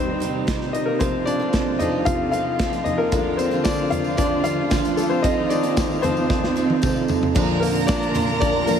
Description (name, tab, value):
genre	piano-driven pop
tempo	113 BPM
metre	4/4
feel	straight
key	unclear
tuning	A4 = 435 Hz
part	clear baby grand piano	accompaniment	0.0-8.8 s	Bb2 to F5	-22 LUFS	left 3 dB	none
part	warm studio string section	sustained chords	0.0-8.8 s	C3 to F4	-28 LUFS	left 1 dB	none
part	picked steel-string acoustic guitar	riff	0.0-8.8 s	Bb2 to Bb4	-26 LUFS	right 8 dB	wide subtle chorus
part	modern studio drum kit	drums	0.2-8.8 s	crash cymbal, hi-hat, kick drum, snare drum, toms	-25 LUFS	right 1 dB	none
part	tambourine	percussion	3.1-8.8 s	none	-40 LUFS	left 5 dB	none
part	clear studio violin section	second line	7.4-8.8 s	Bb4 to Bb5	-26 LUFS	right 3 dB	diffuse ambient delay
room	wet huge ambient reverb, RT60 7.2 s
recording	dreamy mix soaked in reverb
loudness	-18 LUFS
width	side -8 dB against mid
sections	0.0-7.4 A section; 7.4-8.8 B section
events	grand piano solo 0.0-7.4, 7.4-8.8; drum fill 6.3-7.4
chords	0.0 Cm; 1.0 F/C; 3.1 Dm; 5.2 F7; 7.4 Bb